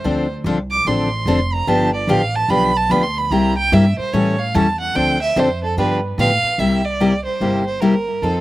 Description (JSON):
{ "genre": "acoustic string swing (jazz manouche)", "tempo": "147 BPM", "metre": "4/4", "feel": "swing 63% on 8ths", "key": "unclear", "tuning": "A4 = 440 Hz", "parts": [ { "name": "rich violin", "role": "melody", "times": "0.0-8.4 s", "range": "A4 to D6", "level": "-20 LUFS", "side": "right 3 dB", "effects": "none" }, { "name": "picked steel-string acoustic guitar", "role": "accompaniment", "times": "0.0-8.4 s", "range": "C3 to A4", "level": "-18 LUFS", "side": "left 2 dB", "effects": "slapback echo" }, { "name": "upright bass", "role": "bass", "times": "0.0-8.4 s", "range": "F1 to A2", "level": "-22 LUFS", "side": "right 1 dB", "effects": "none" } ], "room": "little or no reverb", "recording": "recorded outdoors, with no room sound", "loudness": "-15 LUFS", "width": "side -16 dB against mid", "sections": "0.0-6.6 A section; 6.6-8.4 B section", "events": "violin solo 0.0-6.6", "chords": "0.0 Dm7; 1.7 G7; 3.3 C7; 4.1 A7; 5.0 Dm7; 5.8 G7; 6.6 C7" }